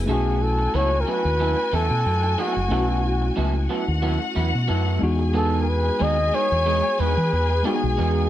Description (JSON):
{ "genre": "lush 1970s-style soul", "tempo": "91 BPM", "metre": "4/4", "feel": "swing 54% on 16ths", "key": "unclear", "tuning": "A4 = 435 Hz", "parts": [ { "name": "muted studio string section", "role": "second line", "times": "0.0-8.3 s", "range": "F#4 to G#5", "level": "-29 LUFS", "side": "left 3 dB", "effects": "none" }, { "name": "tine electric piano", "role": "accompaniment", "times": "0.0-8.3 s", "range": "G#3 to F#4", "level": "-28 LUFS", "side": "left 2 dB", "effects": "none" }, { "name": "fingered electric bass", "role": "bass", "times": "0.0-8.3 s", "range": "F#1 to E3", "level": "-22 LUFS", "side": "equal", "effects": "none" }, { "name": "breathy flugelhorn", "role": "melody", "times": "0.1-8.3 s", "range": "F#4 to D#5", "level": "-24 LUFS", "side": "equal", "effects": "none" }, { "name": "electric guitar through a small old amp", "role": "riff", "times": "0.1-8.3 s", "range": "F#3 to B4", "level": "-29 LUFS", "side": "right 5 dB", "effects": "analog chorus" } ], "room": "light reverb, small room ambience", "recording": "none", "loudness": "-19 LUFS", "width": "side -12 dB against mid", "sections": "0.1-8.3 A section", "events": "none", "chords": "0.1 B7sus4; 5.0 Emaj7" }